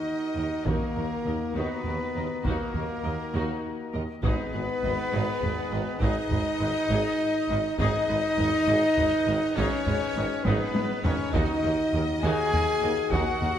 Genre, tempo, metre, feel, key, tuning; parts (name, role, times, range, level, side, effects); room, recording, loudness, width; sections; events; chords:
cinematic, epic orchestral film score; 68 BPM (dotted quarters); 12/8; straight; Eb minor; A4 = 445 Hz
rich symphonic violin section; melody; 0.0-13.6 s; Bb4 to Ab5; -38 LUFS; left 3 dB
concert flute; second line; 0.0-13.6 s; Bb4 to Ab5; -34 LUFS; left 2 dB
rich symphonic violin section; second line; 0.0-13.6 s; Bb4 to Ab5; -37 LUFS; left 4 dB
clear symphonic viola section; accompaniment; 0.0-13.5 s; Eb4 to Eb5; -36 LUFS; equal
mellow French horn section; sustained chords; 0.0-13.6 s; Bb3 to Ab4; -30 LUFS; left 1 dB
mellow woodwind section; sustained chords; 0.0-13.6 s; Eb4 to Bb5; -38 LUFS; left 2 dB
warm trumpet; stabs; 0.0-13.6 s; Bb3 to Ab4; -34 LUFS; equal
mellow trombone section; sustained chords; 0.4-12.9 s; Eb3 to Eb4; -40 LUFS; right 4 dB
clear tuba; bass; 0.4-13.5 s; Ab1 to Eb2; -36 LUFS; right 3 dB
rich studio cello section; bass; 0.4-13.5 s; Eb2 to Ab2; -35 LUFS; right 2 dB
rich studio double bass section; bass; 0.4-13.5 s; Ab1 to Eb2; -33 LUFS; right 2 dB
taiko ensemble; drums; 0.7-13.6 s; -32 LUFS; equal
wet scoring stage reverb, RT60 1.9 s; -24 LUFS; side -10 dB against mid
0.0-13.6 A section
drum fill 10.5-11.3
0.0 Ebm; 4.2 Abm; 11.3 Ebm